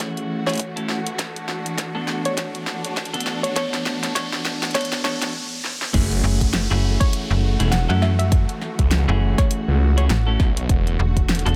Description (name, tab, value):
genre	glitch hop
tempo	101 BPM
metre	4/4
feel	swing 58% on 16ths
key	F# minor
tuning	A4 = 440 Hz
part	woody wave-folded pluck	melody	0.0-10.6 s	C#5 to F#5	-31 LUFS	equal	chorus, tape echo
part	warm symphonic string section	sustained chords	0.0-11.6 s	D3 to F#4	-33 LUFS	equal	vintage 12-bit sampler grit, sidechain pumping
part	clean electric guitar	stabs	0.0-11.6 s	A3 to A4	-30 LUFS	equal	sidechain pumping, tape echo
part	electronic kick drum	drums	0.0-11.3 s	none	-22 LUFS	equal	high-pass filter on kick, high-pass filter on room
part	pop drum kit	drums	0.0-11.5 s	crash cymbal, hi-hat, snare drum	-29 LUFS	equal	high-pass filter on hats, high-pass filter on snare, high-pass filter on cymbals, high-pass filter on room
part	riser and downlifter	sound effects	0.2-10.7 s	none	-35 LUFS	equal	none
part	phased detuned saw bass	bass	5.9-11.0 s	E1 to C#2	-21 LUFS	equal	phaser, tube saturation
part	slap-like FM bass	bass	6.2-11.6 s	E1 to F#2	-22 LUFS	equal	none
room	little or no reverb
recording	none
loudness	-21 LUFS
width	mono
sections	0.0-5.9 A section; 5.9-11.6 B section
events	build-up 0.0-5.9; drum fill 0.0-5.3, 5.6; riser 0.2-5.9; stop 5.3-5.9; drop 5.9-11.6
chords	0.0 F#m7; 1.2 E9sus4; 5.9 F#m7; 10.7 E9sus4